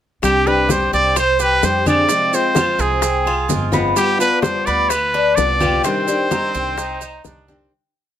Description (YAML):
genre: latin, Cuban son and guajira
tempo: 128 BPM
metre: 4/4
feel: straight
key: C harmonic minor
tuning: A4 = 441 Hz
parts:
  - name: bright trumpet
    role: melody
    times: 0.2-7.4 s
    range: G4 to D5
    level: -17 LUFS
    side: right 1 dB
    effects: none
  - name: picked steel-string acoustic guitar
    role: accompaniment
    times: 0.2-7.7 s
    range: C3 to G4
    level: -22 LUFS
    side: left 2 dB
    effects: none
  - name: upright bass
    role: bass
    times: 0.2-7.7 s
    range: G1 to F2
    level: -24 LUFS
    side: right 1 dB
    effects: none
  - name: bongos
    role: percussion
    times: 0.2-7.7 s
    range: none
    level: -27 LUFS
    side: left 7 dB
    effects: none
  - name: claves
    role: percussion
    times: 0.2-7.3 s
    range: none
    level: -31 LUFS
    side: left 3 dB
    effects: none
  - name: congas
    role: percussion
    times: 0.2-7.7 s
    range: none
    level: -24 LUFS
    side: left 1 dB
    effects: none
  - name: maracas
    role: percussion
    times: 0.2-7.7 s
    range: none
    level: -29 LUFS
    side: right 9 dB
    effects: none
  - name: Cuban tres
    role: arpeggios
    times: 0.5-7.7 s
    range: B3 to C5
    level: -22 LUFS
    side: left 1 dB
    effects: none
  - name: clear trumpet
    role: second line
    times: 6.3-7.7 s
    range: C4 to Eb4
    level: -30 LUFS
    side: right 5 dB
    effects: none
room: moderate studio reverb, RT60 0.7 s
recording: none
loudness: -14 LUFS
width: side -10 dB against mid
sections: 0.2-7.7 A section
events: fade-out 5.8-7.7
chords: 0.2 Csus2; 2.1 Fm; 4.0 G7; 5.8 Cmadd9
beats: | 0.23 0.70 1.17 1.63 | 2.10 2.57 3.03 3.50 | 3.97 4.44 4.91 5.37 | 5.84 6.31 6.78 7.25